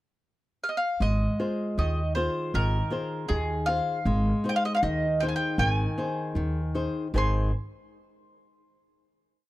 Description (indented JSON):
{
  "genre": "fado-style ballad",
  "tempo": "78 BPM",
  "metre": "2/4",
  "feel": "rubato",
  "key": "Ab major",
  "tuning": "A4 = 441 Hz",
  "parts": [
    { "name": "mandolin", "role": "melody", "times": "0.6-7.5 s", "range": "Ab4 to C6", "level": "-29 LUFS", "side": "equal", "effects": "none" },
    { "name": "nylon-string guitar", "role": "accompaniment", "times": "1.0-7.5 s", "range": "Ab2 to Ab5", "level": "-30 LUFS", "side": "left 2 dB", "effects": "none" },
    { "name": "upright bass", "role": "bass", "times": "1.0-7.5 s", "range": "Ab1 to Eb2", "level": "-27 LUFS", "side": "equal", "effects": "none" }
  ],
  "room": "small room ambience",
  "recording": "dry, close 1970s-style studio recording",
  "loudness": "-24 LUFS",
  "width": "side -16 dB against mid",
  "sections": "0.0-1.0 pickup bar; 1.0-7.2 A section; 7.2-8.7 final chord",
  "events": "none",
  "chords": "0.0 N.C.; 1.0 Ab6; 4.1 Ab"
}